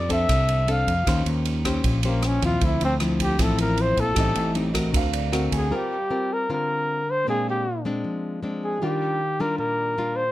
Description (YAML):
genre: bossa nova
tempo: 155 BPM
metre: 4/4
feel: straight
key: D minor, G minor from 5.7 s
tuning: A4 = 439 Hz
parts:
  - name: warm flugelhorn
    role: melody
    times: 0.0-10.3 s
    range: Bb3 to F5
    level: -24 LUFS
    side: left 1 dB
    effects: none
  - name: dark baby grand piano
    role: accompaniment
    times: 0.0-10.3 s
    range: Eb3 to G#5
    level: -36 LUFS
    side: right 5 dB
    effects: none
  - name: nylon-string guitar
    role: accompaniment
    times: 0.0-10.3 s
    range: A2 to C5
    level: -26 LUFS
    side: left 2 dB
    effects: none
  - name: fingered electric bass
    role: bass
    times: 0.0-5.7 s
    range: A1 to F2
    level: -25 LUFS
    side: right 1 dB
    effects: none
  - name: swinging big-band drum kit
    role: drums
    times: 0.1-5.6 s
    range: kick drum, ride cymbal, rim click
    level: -27 LUFS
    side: right 1 dB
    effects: none
room: light reverb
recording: close, detailed microphones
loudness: -21 LUFS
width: side -15 dB against mid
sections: 0.0-5.7 A section; 5.7-10.3 B section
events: flugelhorn solo 0.0-5.7; grand piano fill 4.9-5.7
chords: 0.0 F6; 1.1 Eb13; 2.6 Dm9; 4.2 Am7b5; 4.9 D7alt; 5.7 Gm7; 7.3 Bb9; 8.8 Ebmaj9